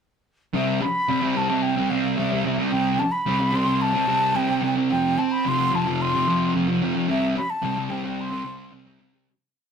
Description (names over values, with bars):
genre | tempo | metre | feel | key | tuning
rock | 110 BPM | 4/4 | straight | C major | A4 = 440 Hz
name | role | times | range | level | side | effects
thick fuzz guitar | riff | 0.5-9.3 s | F2 to C4 | -22 LUFS | equal | distortion
breathy concert flute | melody | 0.6-8.7 s | E5 to C6 | -24 LUFS | equal | none
room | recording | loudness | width
moderate studio reverb, RT60 0.6 s | rough rehearsal-room recording, tube saturation | -20 LUFS | side -7 dB against mid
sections
0.5-9.3 A section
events
fade-out 7.1-9.3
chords
0.5 C5; 4.9 F5; 7.1 C5